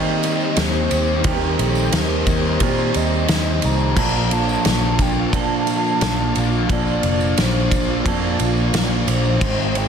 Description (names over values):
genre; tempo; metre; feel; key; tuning
rock, shoegaze and dream pop; 88 BPM; 4/4; straight; unclear; A4 = 445 Hz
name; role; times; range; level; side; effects
hollow clarinet-like synth lead; melody; 0.0-9.9 s; A4 to Bb5; -26 LUFS; equal; chorus, slapback echo
string machine, violas; sustained chords; 0.0-9.9 s; Eb4 to C6; -28 LUFS; equal; ensemble chorus
electric guitar through a small old amp; riff; 0.0-9.9 s; Ab2 to Bb4; -24 LUFS; right 12 dB; reverse reverb
fuzz guitar; riff; 0.0-9.9 s; Ab2 to Eb4; -24 LUFS; left 12 dB; distortion, wide subtle chorus
vintage muted picked electric bass; bass; 0.0-9.9 s; F1 to Eb3; -22 LUFS; equal; none
loose indie drum kit; drums; 0.2-9.9 s; crash cymbal, kick drum, ride cymbal, snare drum; -22 LUFS; equal; none
tambourine; percussion; 0.2-9.7 s; none; -38 LUFS; right 11 dB; none
room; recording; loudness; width
small room ambience; dense, heavily limited modern master; -16 LUFS; side -7 dB against mid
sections
0.0-9.9 A section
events
none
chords
0.0 Eb6; 4.0 Bbmaj7